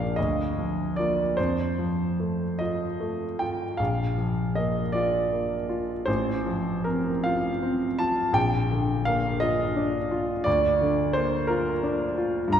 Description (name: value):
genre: classical, romantic nocturne for solo piano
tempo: 49-59 BPM (dotted quarters)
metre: 12/8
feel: rubato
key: Bb major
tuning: A4 = 440 Hz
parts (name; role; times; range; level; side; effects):
- clear grand piano; solo; 0.0-12.6 s; A1 to Bb5; -23 LUFS; equal; none
room: wet scoring stage reverb, RT60 2.0 s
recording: heard from further back in the room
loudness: -23 LUFS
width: side -9 dB against mid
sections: 0.0-12.6 A section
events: none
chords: 0.2 Bb/D; 1.4 F; 3.8 Bb; 6.1 F/A; 8.4 Bb; 10.5 Bb/D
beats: 0.17 1.38 2.60 | 3.79 4.95 6.07 7.26 | 8.36 9.42 10.46 11.50 | 12.54